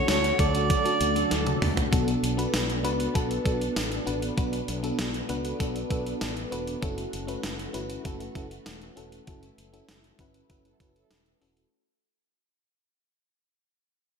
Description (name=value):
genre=1980s-style pop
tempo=98 BPM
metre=4/4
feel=straight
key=unclear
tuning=A4 = 437 Hz
part: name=bright alto saxophone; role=melody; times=0.0-1.6 s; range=C#5 to D5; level=-26 LUFS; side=right 3 dB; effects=digital delay
part: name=FM electric piano with tremolo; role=accompaniment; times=0.0-11.7 s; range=B2 to B4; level=-31 LUFS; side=left 1 dB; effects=phaser
part: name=ensemble organ-string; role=sustained chords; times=0.0-11.7 s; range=D3 to B4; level=-35 LUFS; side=equal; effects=ensemble chorus
part: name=mellow synth brass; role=stabs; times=0.1-1.6, 10.6-11.2 s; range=F#3 to A4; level=-33 LUFS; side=right 3 dB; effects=chorus, phaser, digital delay
part: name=fretless electric bass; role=bass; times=0.1-11.6 s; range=E1 to D2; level=-33 LUFS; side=equal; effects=analog chorus
part: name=clean 12-bit digital drum machine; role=drums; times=0.1-11.7 s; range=hi-hat, kick drum, snare drum, tambourine, toms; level=-30 LUFS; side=equal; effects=overdrive
room=moderate lush hall reverb, RT60 1.7 s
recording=bright 1980s-style digital production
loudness=-25 LUFS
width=side -6 dB against mid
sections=0.0-1.9 A section; 1.9-11.7 B section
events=band accent 0.0-1.9, 9.3-11.7; drum fill 1.3-1.9; fade-out 1.9-11.7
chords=0.0 Dmaj7; 1.9 Bm7; 6.8 F#m7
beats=0.09 0.70 1.31 | 1.92 2.54 3.15 3.76 | 4.37 4.99 5.60 6.21 | 6.82 7.43 8.05 8.66 | 9.27 9.88 10.50 11.11